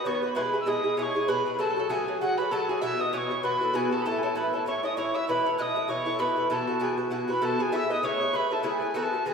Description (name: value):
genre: celtic folk, Celtic reel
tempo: 195 BPM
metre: 4/4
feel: swing 57% on 8ths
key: unclear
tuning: A4 = 440 Hz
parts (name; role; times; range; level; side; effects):
- mellow tin whistle; melody; 0.0-9.3 s; F#5 to F#6; -29 LUFS; right 1 dB; none
- bright baroque flute; second line; 0.0-9.3 s; F#4 to E5; -33 LUFS; left 4 dB; none
- Irish bouzouki; accompaniment; 0.0-9.3 s; A2 to B4; -28 LUFS; equal; none
- mandolin; second line; 0.4-9.3 s; F#4 to E5; -34 LUFS; right 2 dB; none
room: wet concert hall reverb, RT60 1.9 s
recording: recorded in a church or concert hall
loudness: -24 LUFS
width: side -5 dB against mid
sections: 0.4-9.3 A section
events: none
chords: 0.4 E; 1.6 F#m; 2.8 Esus2; 4.1 A; 5.3 Asus2; 6.5 Esus2/B; 7.7 Aadd9